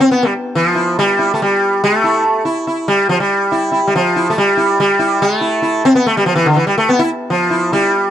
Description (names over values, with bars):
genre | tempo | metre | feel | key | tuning
indian classical | 142 BPM | 4/4 | straight | E raga bhairavi | A4 = 440 Hz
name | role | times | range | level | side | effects
sitar | solo | 0.0-8.1 s | D3 to E4 | -12 LUFS | equal | none
room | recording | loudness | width
small room ambience | dry, close 1970s-style studio recording | -12 LUFS | side -10 dB against mid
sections
0.0-8.1 A section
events
none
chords
none